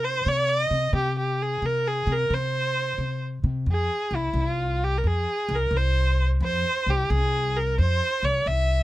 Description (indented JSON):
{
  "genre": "Persian modal ensemble",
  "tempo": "88 BPM (dotted quarters)",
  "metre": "6/8",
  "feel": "straight",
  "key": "C dastgah shur",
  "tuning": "A4 = 439 Hz",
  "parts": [
    { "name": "clear kamancheh", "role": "melody", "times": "0.0-8.8 s", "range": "E4 to E5", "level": "-25 LUFS", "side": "right 1 dB", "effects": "none" },
    { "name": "upright bass", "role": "bass", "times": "0.0-8.8 s", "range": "C2 to C3", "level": "-24 LUFS", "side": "equal", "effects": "none" }
  ],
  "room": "little or no reverb",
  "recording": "close, detailed microphones",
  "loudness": "-22 LUFS",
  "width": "side -16 dB against mid",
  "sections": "0.0-3.7 A section; 3.7-8.8 B section",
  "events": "none",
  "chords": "none",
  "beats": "0.26 | 0.95 1.63 | 2.32 3.00 | 3.68 4.37 | 5.05 5.74 | 6.42 7.11 | 7.79 8.48"
}